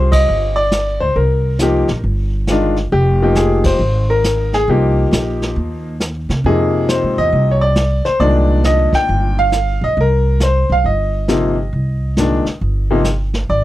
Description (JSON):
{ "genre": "jazz piano trio", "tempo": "136 BPM", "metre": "4/4", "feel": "swing 66% on 8ths", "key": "C minor", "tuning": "A4 = 442 Hz", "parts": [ { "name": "bright upright piano", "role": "melody", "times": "0.0-13.6 s", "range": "Bb2 to G5", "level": "-16 LUFS", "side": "left 1 dB", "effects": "none" }, { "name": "upright bass", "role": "bass", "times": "0.0-13.6 s", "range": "F1 to C3", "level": "-16 LUFS", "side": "equal", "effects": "none" }, { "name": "vintage brush drum kit", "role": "drums", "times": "0.1-13.6 s", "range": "brushed snare drum, hi-hat, kick drum, ride cymbal, snare drum", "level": "-21 LUFS", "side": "right 1 dB", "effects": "none" } ], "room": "little or no reverb", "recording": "dry, close 1970s-style studio recording", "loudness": "-13 LUFS", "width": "side -15 dB against mid", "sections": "0.0-13.6 A section", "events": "band accent 0.1, 3.6", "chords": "0.0 Cm7; 2.9 Fm7; 4.7 Cm7; 6.4 Fm7; 8.2 Cm7", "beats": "0.28 0.72 | 1.16 1.60 2.04 2.48 | 2.92 3.36 3.80 4.24 | 4.68 5.12 5.56 6.00 | 6.44 6.88 7.32 7.76 | 8.20 8.64 9.08 9.53 | 9.97 10.41 10.85 11.29 | 11.73 12.17 12.61 13.05 | 13.49" }